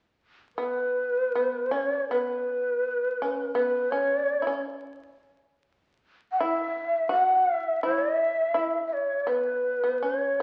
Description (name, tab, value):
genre	japanese traditional, Japanese chamber music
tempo	83 BPM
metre	4/4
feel	uneven beats, rubato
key	unclear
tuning	A4 = 440 Hz
part	breathy hollow long shakuhachi	melody	0.6-10.4 s	B4 to F#5	-27 LUFS	equal	none
part	shamisen	second line	0.6-10.4 s	B3 to F#4	-33 LUFS	equal	none
room	wet recital hall reverb, RT60 1.4 s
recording	very old 78 rpm record, vinyl crackle, nothing above 10.5 kHz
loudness	-27 LUFS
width	mono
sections	0.6-10.4 A section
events	none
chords	none